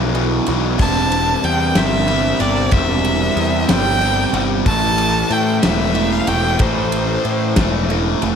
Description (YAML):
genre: post-rock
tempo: 62 BPM (dotted quarters)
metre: 6/8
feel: straight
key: unclear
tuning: A4 = 440 Hz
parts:
  - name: warbly tape-like pad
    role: sustained chords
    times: 0.0-8.4 s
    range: E3 to G5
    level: -32 LUFS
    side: equal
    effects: none
  - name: distorted electric guitar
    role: riff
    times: 0.0-8.4 s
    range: E2 to C4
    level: -22 LUFS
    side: left 13 dB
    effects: overdrive
  - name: raw garage guitar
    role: riff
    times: 0.0-8.4 s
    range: E2 to C4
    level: -22 LUFS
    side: right 12 dB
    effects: overdrive, phaser
  - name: fuzz picked electric bass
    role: bass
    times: 0.0-8.4 s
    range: E1 to A2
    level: -20 LUFS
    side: equal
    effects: overdrive
  - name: big rock drum kit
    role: drums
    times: 0.1-8.4 s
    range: crash cymbal, kick drum, ride cymbal, snare drum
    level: -22 LUFS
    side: left 1 dB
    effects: none
  - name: warm violin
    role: melody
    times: 0.8-7.9 s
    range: C5 to A5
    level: -20 LUFS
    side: equal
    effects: digital delay
room: light reverb, studio reverb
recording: none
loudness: -14 LUFS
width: side -7 dB against mid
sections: 0.0-8.4 A section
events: none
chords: 0.0 Em7; 0.8 C7/E; 4.7 Am7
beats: | 0.79 1.76 | 2.73 3.69 | 4.66 5.63 | 6.60 7.58